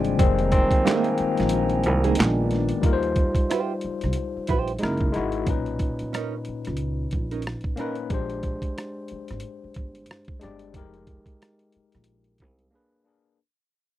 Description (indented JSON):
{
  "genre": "R&B, neo-soul",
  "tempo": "91 BPM",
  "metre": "4/4",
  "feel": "swing 58% on 16ths",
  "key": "Eb major",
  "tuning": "A4 = 440 Hz",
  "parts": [
    { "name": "overdriven tine electric piano", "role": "accompaniment", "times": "0.0-13.4 s", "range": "A#2 to D5", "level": "-26 LUFS", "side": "moving between left 6 dB and equal", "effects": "auto-pan" },
    { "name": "glass harmonica", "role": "sustained chords", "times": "0.0-2.8 s", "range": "Bb3 to Bb5", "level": "-33 LUFS", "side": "right 5 dB", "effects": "none" },
    { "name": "upright bass", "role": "bass", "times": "0.0-12.7 s", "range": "F1 to Eb2", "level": "-27 LUFS", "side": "right 1 dB", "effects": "none" },
    { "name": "boom bap sampler-style drum kit", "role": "drums", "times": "0.0-12.7 s", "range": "handclaps, hi-hat, kick drum, rim click, snare drum", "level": "-25 LUFS", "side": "right 1 dB", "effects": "none" },
    { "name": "nylon-string guitar", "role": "second line", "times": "0.9-7.9 s", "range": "Bb3 to C5", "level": "-27 LUFS", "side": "right 8 dB", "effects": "none" }
  ],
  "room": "little or no reverb",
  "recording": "dry, close 1970s-style studio recording",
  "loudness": "-22 LUFS",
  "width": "side -13 dB against mid",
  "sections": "0.0-2.8 A section; 2.8-13.4 B section",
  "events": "tine electric piano solo 0.0-2.8; kick muted 1.5-2.8; fade-out 2.8-13.4; break 12.7-13.4",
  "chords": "0.2 Fm11; 2.2 Bb7b9; 2.8 Eb69; 4.8 Gb13; 5.5 Bmaj9; 8.1 Bb13; 10.7 Fm11; 12.7 Bb7b9"
}